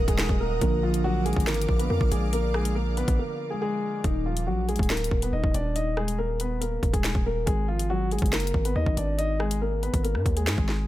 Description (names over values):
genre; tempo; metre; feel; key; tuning
hip hop, drill; 140 BPM; 4/4; half-time; Eb harmonic minor; A4 = 440 Hz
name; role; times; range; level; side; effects
dark baby grand piano; melody; 0.0-10.9 s; Eb3 to Eb5; -28 LUFS; left 1 dB; tape echo
mellow tine electric piano; accompaniment; 0.0-4.1 s; D3 to Gb4; -32 LUFS; right 2 dB; medium stereo tremolo
ethereal airy pad; sustained chords; 0.0-4.0 s; Bb4 to Eb6; -37 LUFS; right 4 dB; ensemble chorus, built-in reverb
distorted 808-style bass; bass; 0.0-10.9 s; D1 to Ab2; -27 LUFS; equal; distortion
drill drum kit; drums; 0.1-10.8 s; finger snaps, hi-hat, kick drum, rim click, snare drum; -26 LUFS; equal; none
room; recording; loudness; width
light reverb; none; -23 LUFS; side -15 dB against mid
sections
0.0-4.0 A section; 4.0-10.9 B section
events
break 3.2-4.0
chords
0.0 Ebm; 0.6 Bb; 4.0 Eb5; 7.5 Ab5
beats
0.19 | 0.61 1.04 1.47 1.90 | 2.33 2.76 3.19 3.61 | 4.04 4.47 4.90 5.33 | 5.76 6.19 6.61 7.04 | 7.47 7.90 8.33 8.76 | 9.19 9.61 10.04 10.47